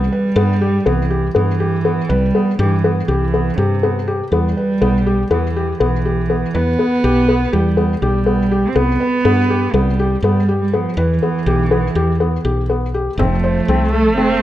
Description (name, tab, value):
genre	contemporary instrumental, chamber music in an uneven meter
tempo	244 BPM (eighths)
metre	9/8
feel	straight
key	E phrygian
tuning	A4 = 441 Hz
part	warm cello	melody	0.0-14.4 s	C3 to C4	-18 LUFS	right 3 dB	none
part	felt-muted upright piano	arpeggios	0.0-14.3 s	B3 to C5	-19 LUFS	left 3 dB	none
part	woody fretless electric bass	bass	0.0-14.4 s	F1 to G2	-18 LUFS	equal	none
part	warm viola	second line	13.2-14.4 s	A3	-19 LUFS	right 2 dB	none
part	frame drum	percussion	13.2-13.4 s	none	-22 LUFS	right 2 dB	none
room	moderate recital hall reverb, RT60 1.6 s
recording	dark, warm production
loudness	-14 LUFS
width	side -13 dB against mid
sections	0.0-13.2 A section; 13.2-14.4 B section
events	none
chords	0.0 Cmaj7; 4.3 Em; 8.8 C5; 11.0 Em; 13.2 F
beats	0.13 0.37 0.62 0.87 1.11 1.36 1.61 1.85 | 2.10 2.35 2.60 2.84 3.09 3.34 3.58 3.83 4.08 | 4.32 4.57 4.82 5.06 5.31 5.55 5.80 6.05 6.29 | 6.54 6.79 7.03 7.28 7.53 7.77 8.02 8.27 8.51 | 8.76 9.01 9.25 9.50 9.74 9.99 10.24 10.48 10.73 | 10.98 11.22 11.47 11.71 11.96 12.21 12.45 12.70 12.95 | 13.19 13.44 13.69 13.93 14.18